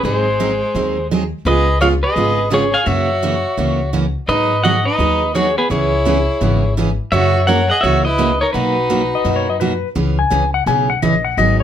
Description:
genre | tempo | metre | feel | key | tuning
country, western swing | 169 BPM | 4/4 | swing 63% on 8ths | unclear | A4 = 442 Hz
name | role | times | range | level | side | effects
pedal steel guitar | melody | 0.0-9.6 s | F#4 to G#5 | -17 LUFS | equal | none
clear fiddle | second line | 0.0-9.6 s | G#3 to A#4 | -24 LUFS | right 1 dB | none
picked steel-string acoustic guitar | accompaniment | 0.0-11.6 s | B2 to G#4 | -20 LUFS | right 4 dB | none
upright bass | bass | 0.0-11.6 s | G#1 to G#2 | -20 LUFS | left 1 dB | none
clean lap steel guitar | second line | 9.2-11.6 s | B4 to G#5 | -18 LUFS | left 7 dB | none
room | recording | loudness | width
moderate studio ambience, RT60 0.4 s | none | -14 LUFS | side -10 dB against mid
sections
0.0-10.0 A section; 10.0-11.6 B section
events
electric slide guitar solo 10.0-11.6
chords
0.0 G#7; 1.5 C#7; 2.9 F#7; 4.3 G#m7; 5.7 C#m7; 7.1 F#7; 8.5 Bmaj7; 10.0 C#m7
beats
| 0.04 0.39 0.74 1.10 | 1.45 1.81 2.16 2.52 | 2.87 3.22 3.58 3.93 | 4.29 4.64 5.00 5.35 | 5.70 6.06 6.41 6.77 | 7.12 7.48 7.83 8.19 | 8.54 8.90 9.25 9.61 | 9.96 10.31 10.67 11.02 | 11.38

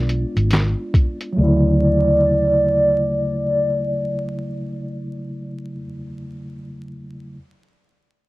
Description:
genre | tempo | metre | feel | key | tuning
lo-fi hip hop | 69 BPM | 4/4 | swing 66% on 16ths | D major | A4 = 440 Hz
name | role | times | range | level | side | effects
hollow clarinet-like synth lead | melody | 0.0-5.6 s | D5 | -19 LUFS | equal | chorus, phaser, low-pass filter, cassette tape
mellow tine electric piano | accompaniment | 0.0-7.4 s | C#3 to F4 | -23 LUFS | equal | medium stereo tremolo, cassette tape, low-pass filter
vintage muted fingered electric bass | bass | 0.0-5.8 s | Ab1 to D2 | -20 LUFS | equal | none
lo-fi sampler-style drum kit | drums | 0.1-1.4 s | handclaps, hi-hat, kick drum, snare drum | -18 LUFS | equal | cassette tape
room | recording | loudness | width
moderate small room reverb, RT60 0.6 s | home recording on cassette, vinyl crackle | -16 LUFS | side -19 dB against mid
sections
0.0-1.4 A section; 1.4-4.9 B section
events
filter sweep 0.0-1.4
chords
0.0 Bb7b9 (rootless); 1.4 Dmaj7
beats
0.51 | 1.38 2.24 3.11 3.98

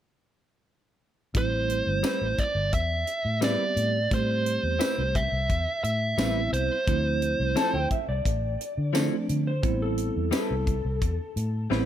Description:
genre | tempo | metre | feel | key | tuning
straight-eighth soul blues | 87 BPM | 4/4 | straight | A minor | A4 = 440 Hz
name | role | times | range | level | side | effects
bell-like tine electric piano | accompaniment | 1.3-11.9 s | F3 to G4 | -31 LUFS | right 5 dB | medium stereo tremolo
vintage muted fingered electric bass | bass | 1.3-11.9 s | G1 to D3 | -28 LUFS | left 1 dB | none
tight funk drum kit | drums | 1.3-11.9 s | hi-hat, kick drum, snare drum, tambourine | -30 LUFS | equal | none
biting lead guitar | melody | 1.4-7.9 s | C5 to E5 | -28 LUFS | right 2 dB | overdrive
direct-recorded clean electric guitar | stabs | 2.0-11.9 s | F3 to B4 | -34 LUFS | left 6 dB | wide subtle chorus
electric slide guitar | second line | 7.6-11.7 s | A4 to A5 | -32 LUFS | left 2 dB | none
room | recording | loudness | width
light reverb | none | -24 LUFS | side -10 dB against mid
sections
1.4-11.9 A section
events
none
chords
1.4 Am9; 6.9 Dm9; 9.6 Am9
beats
| 1.35 2.04 2.73 3.42 | 4.11 4.80 5.49 6.18 | 6.88 7.57 8.26 8.95 | 9.64 10.33 11.02 11.71

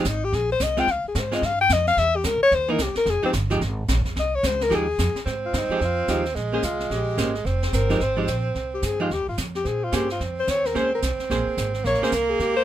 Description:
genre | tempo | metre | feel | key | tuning
jazz, small-group swing and bop | 219 BPM | 4/4 | swing 62% on 8ths | F minor | A4 = 440 Hz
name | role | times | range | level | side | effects
clear alto saxophone | melody | 0.0-12.6 s | C4 to G5 | -23 LUFS | left 3 dB | none
archtop guitar, miked and amplified | accompaniment | 0.0-12.1 s | E3 to C5 | -25 LUFS | right 3 dB | none
upright bass | bass | 0.0-12.6 s | F1 to Bb2 | -27 LUFS | right 1 dB | none
jazz brush drum kit | drums | 0.0-12.6 s | brushed snare drum, hi-hat, kick drum, snare drum | -30 LUFS | right 1 dB | none
clear tenor saxophone | second line | 5.3-12.6 s | Ab3 to C4 | -27 LUFS | right 5 dB | none
room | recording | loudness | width
little or no reverb | minimal, uncompressed stereo recording | -20 LUFS | side -12 dB against mid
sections
0.0-5.3 A section; 5.3-12.6 B section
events
alto saxophone solo 0.0-5.3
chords
0.0 Fm9 (rootless); 0.9 Db; 2.0 C7#9; 3.1 Fm9; 6.4 Bbm9; 7.5 Fm9; 9.6 Bbm9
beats
0.05 0.33 0.60 | 0.87 1.15 1.42 1.70 | 1.97 2.24 2.52 2.79 | 3.06 3.34 3.61 3.89 | 4.16 4.43 4.71 4.98 | 5.26 5.53 5.80 6.08 | 6.35 6.63 6.90 7.18 | 7.45 7.73 8.00 8.28 | 8.55 8.82 9.10 9.37 | 9.65 9.92 10.20 10.47 | 10.75 11.02 11.30 11.57 | 11.85 12.12 12.40

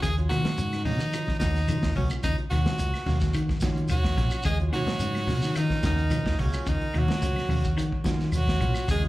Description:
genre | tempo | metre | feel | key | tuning
afrobeat | 108 BPM | 4/4 | straight | Eb minor | A4 = 438 Hz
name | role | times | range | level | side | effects
edgy tenor saxophone | melody | 0.0-9.0 s | Db4 to Ab4 | -32 LUFS | equal | slapback echo
clean electric guitar | arpeggios | 0.0-9.1 s | Db3 to Gb3 | -34 LUFS | left 4 dB | none
mellow electric guitar | stabs | 0.0-8.8 s | Bb3 to Gb4 | -40 LUFS | right 5 dB | slapback echo
fingered electric bass | bass | 0.0-9.1 s | Bb1 to Eb3 | -27 LUFS | equal | none
crunchy breakbeat drum kit | drums | 0.0-9.1 s | hi-hat, kick drum, snare drum | -30 LUFS | equal | none
shekere | percussion | 0.0-9.0 s | none | -36 LUFS | equal | none
tine electric piano | accompaniment | 0.2-9.1 s | Gb3 to F5 | -39 LUFS | right 1 dB | fast stereo tremolo
claves | percussion | 0.3-8.9 s | none | -44 LUFS | equal | none
congas | percussion | 0.3-8.7 s | none | -32 LUFS | right 1 dB | none
clear alto saxophone | second line | 3.9-9.0 s | Db3 to Ab3 | -35 LUFS | right 3 dB | slapback echo
room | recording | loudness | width
little or no reverb | live gig heard through the venue's PA, club reverb | -23 LUFS | side -17 dB against mid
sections
0.0-9.1 A section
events
none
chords
0.0 Ebm7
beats
| 0.03 0.58 1.14 1.69 | 2.24 2.80 3.35 3.90 | 4.46 5.01 5.56 6.11 | 6.67 7.22 7.77 8.33 | 8.88

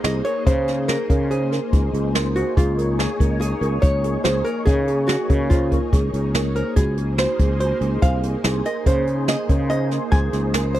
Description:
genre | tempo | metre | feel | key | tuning
progressive instrumental, band music in an uneven meter | 143 BPM | 5/4 | straight | unclear | A4 = 440 Hz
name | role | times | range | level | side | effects
hollow-body jazz guitar | melody | 0.0-10.8 s | F4 to Ab5 | -25 LUFS | equal | none
analog string pad | accompaniment | 0.0-10.8 s | Bb3 to Db5 | -28 LUFS | left 2 dB | ensemble chorus
celesta | arpeggios | 0.0-10.8 s | Gb4 to Db5 | -28 LUFS | right 7 dB | none
sustaining fretless electric bass | bass | 0.0-10.8 s | C2 to Db3 | -22 LUFS | equal | none
jazz brush drum kit | drums | 0.0-10.8 s | hi-hat, kick drum, snare drum | -20 LUFS | equal | none
room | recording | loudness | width
small room ambience | dry, close 1970s-style studio recording | -18 LUFS | side -13 dB against mid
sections
0.0-10.8 A section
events
none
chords
0.0 Ab; 2.6 Bbm7/Db; 6.8 Ab7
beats
0.04 | 0.46 0.89 1.30 1.73 2.15 | 2.57 2.99 3.41 3.83 4.25 | 4.67 5.09 5.51 5.93 6.35 | 6.77 7.19 7.61 8.03 8.45 | 8.87 9.28 9.70 10.12 10.54

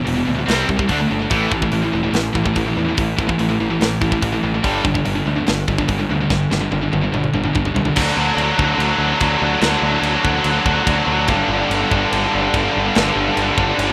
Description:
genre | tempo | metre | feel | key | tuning
heavy metal | 144 BPM | 4/4 | straight | unclear | A4 = 440 Hz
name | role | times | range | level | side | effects
distorted electric guitar | riff | 0.0-13.9 s | E2 to D4 | -21 LUFS | equal | overdrive
scooped high-gain guitar | riff | 0.0-13.9 s | E2 to D4 | -24 LUFS | equal | distortion
growling picked electric bass | bass | 0.1-13.9 s | E1 to E2 | -26 LUFS | equal | overdrive
tight metal drum kit | drums | 0.1-13.9 s | crash cymbal, hi-hat, kick drum, snare drum, toms | -25 LUFS | equal | none
room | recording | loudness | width
light reverb, small room ambience | rough home demo mix | -18 LUFS | mono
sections
0.0-8.0 A section; 8.0-13.9 B section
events
drum fill 6.3-8.0; half time 8.0-13.9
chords
0.5 C5; 0.9 D5; 1.3 A5; 4.6 G5; 8.0 D; 11.3 G5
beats
0.06 0.48 0.90 | 1.31 1.73 2.14 2.56 | 2.98 3.39 3.81 4.22 | 4.64 5.06 5.47 5.89 | 6.30 6.72 7.13 7.55 | 7.96 8.38 8.79 9.21 | 9.62 10.04 10.46 10.87 | 11.29 11.70 12.12 12.53 | 12.95 13.36 13.78

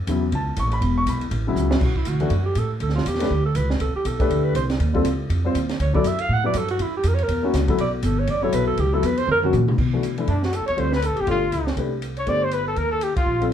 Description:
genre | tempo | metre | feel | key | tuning
jazz, small-group swing and bop | 241 BPM | 4/4 | swing 59% on 8ths | B minor | A4 = 440 Hz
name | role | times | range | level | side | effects
upright bass | bass | 0.0-13.5 s | E1 to B2 | -23 LUFS | equal | none
warm concert grand piano | accompaniment | 0.1-13.5 s | C#3 to C#6 | -24 LUFS | left 4 dB | none
open jazz drum kit | drums | 0.1-13.5 s | crash cymbal, hi-hat, kick drum, ride cymbal, snare drum, toms | -28 LUFS | equal | none
breathy alto saxophone | second line | 1.8-13.5 s | D4 to F#5 | -26 LUFS | right 3 dB | none
warm trumpet | melody | 10.3-13.5 s | D4 to D5 | -24 LUFS | left 2 dB | none
room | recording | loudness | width
wet club reverb, RT60 0.6 s | heard from further back in the room | -19 LUFS | side -9 dB against mid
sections
0.0-1.8 A section; 1.8-9.8 A section; 9.8-13.5 B section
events
drum fill 1.6, 9.3-9.8; alto saxophone solo 1.8-9.8; band accent 13.1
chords
0.0 F#m7; 0.8 E5; 1.3 Aadd9; 1.8 Bm7; 2.8 Dsus2; 3.3 Bm9; 3.8 Csus2; 4.8 D#9; 5.8 Dadd9; 6.8 F#7; 7.8 B5; 8.8 A13/C#; 9.3 F#; 9.8 Bm7; 10.8 Dm7; 11.3 G5; 11.8 Csus2; 12.8 D#add9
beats
0.07 0.32 0.57 | 0.82 1.07 1.31 1.56 | 1.81 2.06 2.31 2.56 | 2.81 3.06 3.31 3.56 | 3.80 4.05 4.30 4.55 | 4.80 5.05 5.30 5.55 | 5.80 6.04 6.29 6.54 | 6.79 7.04 7.29 7.54 | 7.79 8.04 8.28 8.53 | 8.78 9.03 9.28 9.53 | 9.78 10.03 10.28 10.53 | 10.77 11.02 11.27 11.52 | 11.77 12.02 12.27 12.52 | 12.77 13.02 13.27 13.52

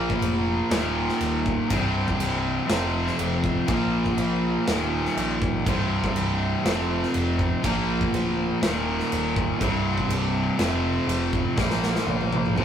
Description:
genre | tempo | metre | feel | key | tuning
hard rock | 122 BPM | 4/4 | straight | unclear | A4 = 435 Hz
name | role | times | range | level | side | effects
cranked stack guitar | riff | 0.0-12.6 s | C2 to Bb3 | -27 LUFS | left 5 dB | overdrive
cranked stack guitar | riff | 0.0-12.6 s | C2 to Bb3 | -26 LUFS | right 3 dB | overdrive
picked electric bass | bass | 0.0-12.6 s | C1 to Bb1 | -29 LUFS | equal | none
big rock drum kit | drums | 0.1-12.6 s | crash cymbal, kick drum, snare drum, toms | -28 LUFS | right 1 dB | none
room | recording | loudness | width
moderate stone room reverb, RT60 1.0 s | rough rehearsal-room recording | -22 LUFS | side -8 dB against mid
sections
0.0-12.6 A section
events
drum fill 11.6-12.6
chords
0.0 Bb5; 0.7 Eb5; 1.7 C5; 2.7 F5; 3.7 Bb5; 4.7 Eb5; 5.7 C5; 6.6 F5; 7.6 Bb; 8.6 Eb5; 9.6 C5; 10.6 F5; 11.6 Bb5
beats
0.22 0.71 1.21 | 1.70 2.19 2.69 3.18 | 3.68 4.17 4.67 5.16 | 5.65 6.15 6.64 7.13 | 7.63 8.12 8.62 9.11 | 9.60 10.10 10.59 11.08 | 11.58 12.07 12.56

